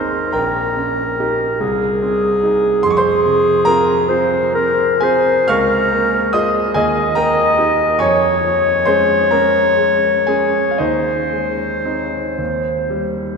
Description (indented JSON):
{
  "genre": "classical, romantic duo for clarinet and grand piano",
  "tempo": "38-49 BPM (dotted quarters)",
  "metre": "6/8",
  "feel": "rubato",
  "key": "unclear",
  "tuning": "A4 = 440 Hz",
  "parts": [
    { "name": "warm clarinet", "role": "melody", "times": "0.0-13.1 s", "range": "Ab4 to Eb5", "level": "-15 LUFS", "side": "left 1 dB", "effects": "none" },
    { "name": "clear concert grand piano", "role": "accompaniment", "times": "0.0-13.4 s", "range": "Ab1 to F6", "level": "-18 LUFS", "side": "right 2 dB", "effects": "none" }
  ],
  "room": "wet cathedral reverb, RT60 5.6 s",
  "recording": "none",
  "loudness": "-13 LUFS",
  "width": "side -5 dB against mid",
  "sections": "0.0-13.4 A section",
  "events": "none",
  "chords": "0.4 Eb7/Bb; 1.6 Ab/C; 2.9 Fm; 5.5 Bbm7/Db; 6.8 Eb; 8.0 Db/F; 10.8 Ab/Eb; 12.4 Eb"
}